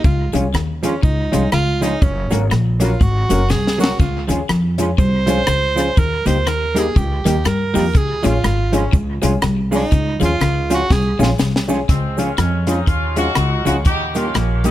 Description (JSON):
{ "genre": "ska", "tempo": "122 BPM", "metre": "4/4", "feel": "swing 60% on 8ths", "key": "Db major", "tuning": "A4 = 440 Hz", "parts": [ { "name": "breathy tenor saxophone", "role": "melody", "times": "0.0-11.2 s", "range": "Db4 to C5", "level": "-22 LUFS", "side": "right 3 dB", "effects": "none" }, { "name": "clean electric guitar", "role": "riff", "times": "0.0-14.5 s", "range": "Gb2 to G3", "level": "-25 LUFS", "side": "left 5 dB", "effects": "dub echo" }, { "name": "upright bass", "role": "bass", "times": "0.0-14.7 s", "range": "Gb1 to G2", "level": "-19 LUFS", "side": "equal", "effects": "none" }, { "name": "compact cocktail drum kit", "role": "drums", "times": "0.0-14.7 s", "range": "hi-hat, kick drum, rim click, snare drum", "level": "-18 LUFS", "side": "equal", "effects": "dub echo" }, { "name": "cabasa", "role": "percussion", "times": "0.0-14.7 s", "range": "none", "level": "-38 LUFS", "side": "right 5 dB", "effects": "none" }, { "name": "hollow-body jazz guitar", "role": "accompaniment", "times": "0.3-14.7 s", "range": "F3 to G4", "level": "-22 LUFS", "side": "right 3 dB", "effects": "none" }, { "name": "dark upright piano", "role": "stabs", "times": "0.3-14.7 s", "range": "Bb3 to Bb4", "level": "-25 LUFS", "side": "left 4 dB", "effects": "none" }, { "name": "bright horn section", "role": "melody", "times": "11.9-14.7 s", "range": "Ab3 to G4", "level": "-22 LUFS", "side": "left 1 dB", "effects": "dub echo" } ], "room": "little or no reverb", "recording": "none", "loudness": "-14 LUFS", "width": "side -13 dB against mid", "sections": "0.0-11.9 A section; 11.9-14.7 B section", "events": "tenor saxophone solo 0.0-11.9; drum fill 3.5-4.0, 10.9-11.9", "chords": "0.0 Db; 2.0 Gb; 4.0 Db; 6.0 Eb; 7.9 Db; 13.9 Eb" }